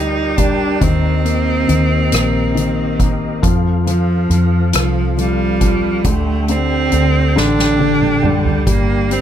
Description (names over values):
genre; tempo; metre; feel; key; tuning
six-eight pop ballad; 46 BPM (dotted quarters); 6/8; straight; unclear; A4 = 440 Hz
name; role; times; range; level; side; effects
bright cello; melody; 0.0-9.2 s; F3 to Eb4; -18 LUFS; right 4 dB; ping-pong delay
warm grand piano; accompaniment; 0.0-9.2 s; D3 to Bb3; -19 LUFS; left 5 dB; none
mellow tonewheel organ; sustained chords; 0.0-9.2 s; C4 to G5; -26 LUFS; right 1 dB; chorus vibrato, slow rotary speaker
vintage muted fingered electric bass; bass; 0.0-9.2 s; G1 to F2; -18 LUFS; equal; none
soft-mallet drum kit; drums; 0.4-9.2 s; hi-hat, kick drum, rim click, snare drum, toms; -18 LUFS; equal; none
room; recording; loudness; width
studio reverb; none; -13 LUFS; side -10 dB against mid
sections
0.0-9.2 A section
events
drum fill 7.4-8.7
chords
0.0 Gm; 0.8 Eb6; 3.4 F; 6.1 Dsus4; 8.7 Gm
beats
| 0.82 2.12 | 3.43 4.74 | 6.05 7.36 | 8.67